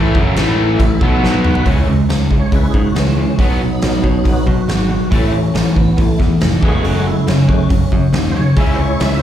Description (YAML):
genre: classic rock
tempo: 139 BPM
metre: 4/4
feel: straight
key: C# minor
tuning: A4 = 439 Hz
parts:
  - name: tonewheel organ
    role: sustained chords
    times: 0.0-9.2 s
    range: E3 to F#5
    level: -22 LUFS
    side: equal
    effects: slow rotary speaker, chorus vibrato
  - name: distorted electric guitar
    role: riff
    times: 0.0-9.2 s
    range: F#2 to C#4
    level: -17 LUFS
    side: equal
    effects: distortion, slapback echo
  - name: overdriven electric guitar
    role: riff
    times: 0.0-1.7 s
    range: F#2 to B3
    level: -21 LUFS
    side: left 2 dB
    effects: slapback echo
  - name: modern bright picked electric bass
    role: bass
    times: 0.0-9.2 s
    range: E#1 to B2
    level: -18 LUFS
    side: equal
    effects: none
  - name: huge arena drum kit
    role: drums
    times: 0.1-9.1 s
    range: crash cymbal, hi-hat, kick drum, snare drum, toms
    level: -16 LUFS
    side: equal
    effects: none
room: light reverb, small room ambience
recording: live gig heard through the venue's PA, club reverb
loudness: -12 LUFS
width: side -10 dB against mid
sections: 0.0-1.7 A section; 1.7-9.2 B section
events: drum fill 1.2-1.7; tonewheel organ solo 1.7-9.2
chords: 0.0 A5; 1.2 B5; 1.7 C#m; 3.4 B; 5.1 A; 6.6 F#madd9; 8.6 C#m